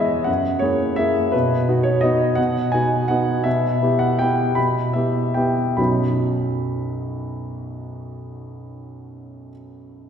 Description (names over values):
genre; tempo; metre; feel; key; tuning
classical, piano waltz; 136-180 BPM; 3/4; rubato; B major; A4 = 440 Hz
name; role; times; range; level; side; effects
warm grand piano; solo; 0.0-10.1 s; B1 to B5; -19 LUFS; equal; none
room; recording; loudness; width
wet concert hall reverb, RT60 2.0 s; recorded in a church or concert hall; -18 LUFS; side -8 dB against mid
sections
0.0-5.8 A section; 5.8-8.2 B section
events
slowing down 2.9-5.8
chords
0.3 F#9; 1.3 B; 3.5 Em/B; 5.8 B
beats
| 0.28 0.62 0.98 | 1.33 1.68 2.03 | 2.38 2.73 3.10 | 3.46 3.82 4.20 | 4.57 4.95 5.36 | 5.78 6.18 6.58 | 6.99 7.39 7.81